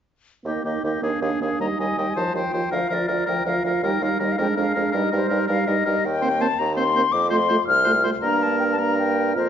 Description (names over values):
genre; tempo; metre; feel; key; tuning
quick classical-period movement for wind quintet; 108 BPM (dotted quarters); 6/8; rubato; Eb major; A4 = 440 Hz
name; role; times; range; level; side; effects
clear bassoon; bass; 0.4-9.5 s; C2 to G2; -26 LUFS; right 2 dB; none
concert flute; melody; 0.5-9.5 s; C5 to F6; -24 LUFS; left 5 dB; none
clear oboe; second line; 0.5-9.5 s; G4 to Eb5; -27 LUFS; left 2 dB; none
mellow French horn; accompaniment; 0.5-9.5 s; F3 to Bb3; -27 LUFS; right 2 dB; none
mellow clarinet; accompaniment; 0.5-9.5 s; C4 to F4; -28 LUFS; right 8 dB; none
room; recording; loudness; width
moderate scoring stage reverb, RT60 1.6 s; nothing above 7.5 kHz; -19 LUFS; side -9 dB against mid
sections
0.4-1.6 A section; 1.6-9.5 B section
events
none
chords
0.4 Eb; 1.0 Bb7/Eb; 1.6 Eb; 2.2 F5/Eb; 2.7 Bb/D; 3.8 Eb; 4.4 Bb7/F; 4.9 Eb/G; 6.0 Cm7/Eb; 7.1 F; 8.2 Gm